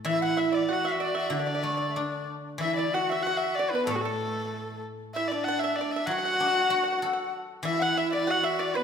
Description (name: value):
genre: chinese traditional, Chinese chamber ensemble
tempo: 96 BPM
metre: 4/4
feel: rubato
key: D gong mode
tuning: A4 = 439 Hz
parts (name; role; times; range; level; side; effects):
- guzheng; accompaniment; 0.0-8.8 s; A2 to A4; -34 LUFS; left 3 dB; none
- warm erhu; melody; 0.1-8.8 s; F#4 to F#5; -30 LUFS; left 1 dB; none
- large dizi; second line; 0.1-8.8 s; A4 to F#5; -32 LUFS; left 6 dB; none
- pipa; second line; 0.1-8.8 s; A4 to F#5; -34 LUFS; right 4 dB; none
- rich horsehead fiddle; second line; 0.1-8.8 s; A3 to F#4; -31 LUFS; right 4 dB; none
room: wet recital hall reverb, RT60 1.6 s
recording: minimal, uncompressed stereo recording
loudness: -25 LUFS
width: side -7 dB against mid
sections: 0.0-8.8 A section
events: none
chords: none